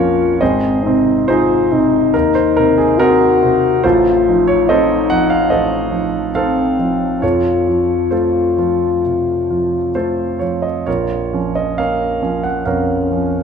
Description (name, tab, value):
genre	classical, romantic duo for French horn and grand piano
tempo	64-74 BPM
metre	4/4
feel	rubato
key	unclear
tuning	A4 = 440 Hz
part	mellow French horn	melody	0.0-13.4 s	C4 to Gb4	-16 LUFS	left 5 dB	none
part	warm concert grand piano	accompaniment	0.0-13.4 s	Ab1 to Gb5	-15 LUFS	right 3 dB	none
room	moderate recital hall reverb, RT60 1.5 s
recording	dark, warm production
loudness	-13 LUFS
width	side -6 dB against mid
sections	0.0-13.4 A section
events	none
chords	0.4 Ab; 3.8 F7/A; 7.2 F; 10.9 Bbm